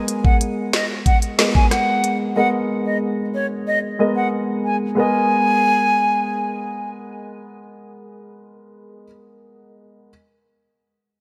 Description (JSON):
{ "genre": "dancehall", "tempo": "92 BPM", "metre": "4/4", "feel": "straight", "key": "G# minor", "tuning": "A4 = 440 Hz", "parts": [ { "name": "dark baby grand piano", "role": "accompaniment", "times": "0.0-10.1 s", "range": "G#3 to D#5", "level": "-24 LUFS", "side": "equal", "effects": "analog chorus" }, { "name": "island pop drum kit", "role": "drums", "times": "0.1-2.2 s", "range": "handclaps, hi-hat, kick drum, rim click, snare drum", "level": "-20 LUFS", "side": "equal", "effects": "gated reverb" }, { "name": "breathy silver concert flute", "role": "melody", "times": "0.2-6.9 s", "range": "C#5 to G#5", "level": "-23 LUFS", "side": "equal", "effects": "none" } ], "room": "light reverb, small room ambience", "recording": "bright 1980s-style digital production", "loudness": "-19 LUFS", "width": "mono", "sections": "0.0-5.0 A section; 5.0-7.6 B section", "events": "none", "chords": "0.0 G#madd9", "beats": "0.41 1.06 1.71 | 2.37 3.02 3.67 4.32 | 4.97 5.63 6.28 6.93" }